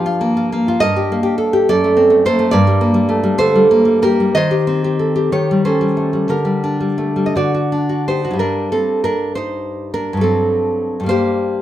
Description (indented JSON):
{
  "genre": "romantic piece for solo classical guitar",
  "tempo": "56-71 BPM (dotted quarters)",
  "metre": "6/8",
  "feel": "rubato",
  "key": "G minor",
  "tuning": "A4 = 439 Hz",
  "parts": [
    { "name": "nylon-string guitar", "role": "solo", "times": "0.0-11.6 s", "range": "F#2 to G5", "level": "-13 LUFS", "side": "equal", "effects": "none" }
  ],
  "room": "moderate stone room reverb, RT60 1.1 s",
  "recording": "band playing live in one room, faint mains hum",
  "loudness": "-13 LUFS",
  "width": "side -12 dB against mid",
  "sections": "0.0-8.4 A section; 8.4-11.6 B section",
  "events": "none",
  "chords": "0.0 Gm7; 0.8 Gm; 1.7 D7/F#; 2.5 Gm; 4.4 Cm/Eb; 5.3 Eb7; 6.3 Gm/D; 7.4 D; 8.4 G5; 10.2 Gsus24; 11.1 Gm"
}